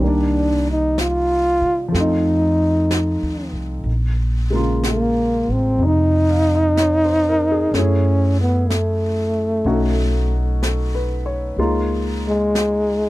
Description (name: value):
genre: jazz ballad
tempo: 62 BPM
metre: 4/4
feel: swing 69% on 8ths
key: unclear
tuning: A4 = 439 Hz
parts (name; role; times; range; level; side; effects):
- mellow trombone; melody; 0.0-13.1 s; Ab3 to F4; -18 LUFS; equal; none
- warm concert grand piano; accompaniment; 0.0-13.1 s; C3 to F5; -23 LUFS; left 2 dB; none
- upright bass; bass; 0.0-13.1 s; A1 to C3; -20 LUFS; equal; none
- jazz brush drum kit; drums; 0.0-13.1 s; brushed snare drum, hi-hat, snare drum; -30 LUFS; equal; none
room: little or no reverb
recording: dry, close 1970s-style studio recording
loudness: -16 LUFS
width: side -17 dB against mid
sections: 0.0-13.1 A section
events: none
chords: 0.0 Cm9; 1.9 F7; 3.9 Bbm9; 7.7 Gbm7; 9.6 Cb9; 11.6 Db69